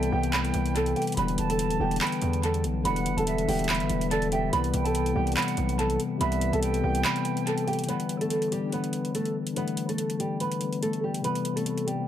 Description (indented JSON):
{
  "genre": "hip hop, trap",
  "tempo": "143 BPM",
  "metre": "4/4",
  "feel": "half-time",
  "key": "E minor",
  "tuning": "A4 = 440 Hz",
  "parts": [
    { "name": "flamenco guitar", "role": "melody", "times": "0.0-12.1 s", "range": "G3 to B5", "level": "-30 LUFS", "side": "right 2 dB", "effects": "dub echo" },
    { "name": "silver concert flute", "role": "second line", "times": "0.0-7.8 s", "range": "D5 to A5", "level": "-35 LUFS", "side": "right 9 dB", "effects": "dub echo" },
    { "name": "mellow tine electric piano", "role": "accompaniment", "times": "0.0-12.1 s", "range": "C3 to D4", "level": "-29 LUFS", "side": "left 6 dB", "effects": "dub echo" },
    { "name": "distorted 808-style bass", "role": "bass", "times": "0.0-7.0 s", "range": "D1 to E2", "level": "-29 LUFS", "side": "right 1 dB", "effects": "distortion" },
    { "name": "trap drum kit", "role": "drums", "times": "0.0-12.0 s", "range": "handclaps, hi-hat", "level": "-34 LUFS", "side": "right 1 dB", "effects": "dub echo" }
  ],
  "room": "light reverb, small room ambience",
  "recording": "echo-heavy mix",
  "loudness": "-24 LUFS",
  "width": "side -10 dB against mid",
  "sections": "0.0-7.9 A section; 7.9-12.1 B section",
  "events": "kick muted 7.0-7.9",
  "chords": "0.0 Cmaj7; 1.2 Em7; 4.5 Cmaj7; 7.9 Em7; 11.2 Cmaj7",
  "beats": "0.33 0.75 | 1.17 1.59 2.01 2.43 | 2.85 3.27 3.69 4.11 | 4.53 4.95 5.37 5.79 | 6.21 6.63 7.05 7.47 | 7.89 8.30 8.72 9.14 | 9.56 9.98 10.40 10.82 | 11.24 11.66"
}